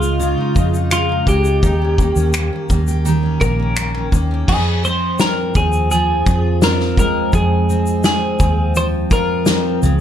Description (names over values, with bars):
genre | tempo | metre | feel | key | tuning
acoustic pop | 84 BPM | 4/4 | straight | F minor | A4 = 441 Hz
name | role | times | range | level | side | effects
twelve-string electric guitar | melody | 0.0-9.8 s | F4 to C5 | -20 LUFS | left 1 dB | plate reverb
picked steel-string acoustic guitar | accompaniment | 0.0-10.0 s | F2 to G4 | -20 LUFS | right 1 dB | double-tracked left and right, plate reverb
vintage muted fingered electric bass | bass | 0.0-10.0 s | Bb1 to F2 | -19 LUFS | equal | none
loose indie drum kit | drums | 0.0-10.0 s | crash cymbal, finger snaps, kick drum, shaker, snare drum | -18 LUFS | equal | none
room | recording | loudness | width
light reverb | none | -14 LUFS | side -10 dB against mid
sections
0.0-4.5 A section; 4.5-10.0 B section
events
none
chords
0.0 Dbadd9; 1.6 Eb7; 4.5 Fm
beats
0.20 0.92 | 1.63 2.34 3.06 3.77 | 4.48 5.20 5.91 6.62 | 7.33 8.05 8.76 9.47